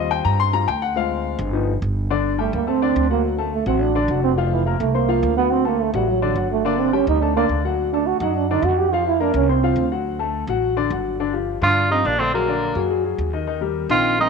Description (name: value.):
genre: jazz.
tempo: 211 BPM.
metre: 4/4.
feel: straight.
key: G harmonic minor, G minor from 11.2 s.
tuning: A4 = 440 Hz.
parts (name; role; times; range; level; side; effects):
warm upright piano; accompaniment; 0.0-14.3 s; D3 to C6; -22 LUFS; left 10 dB; none.
upright bass; bass; 0.0-14.3 s; F1 to G2; -24 LUFS; right 1 dB; none.
trombone with bucket mute; second line; 2.4-14.3 s; E3 to G4; -21 LUFS; right 11 dB; none.
warm tenor saxophone; melody; 11.6-14.3 s; Bb3 to F4; -18 LUFS; right 1 dB; none.
room: moderate echo chamber reverb, RT60 1.9 s, studio reverb.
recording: 1960s-style stereo with parts hard left and right.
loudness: -18 LUFS.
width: side -5 dB against mid.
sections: 0.0-2.1 A section; 2.1-11.2 A section; 11.2-14.3 B section.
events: upright piano solo 0.0-2.1; trombone solo 2.1-11.2.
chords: 0.0 Eb69; 1.0 Dm7b5; 1.5 G7b13; 2.1 Gsus2; 3.2 D; 4.4 Fsus4; 5.5 Gsus2; 7.8 D; 8.9 Fsus4; 10.1 D; 11.2 Gm7; 12.3 Bbaug7; 13.5 Eb6.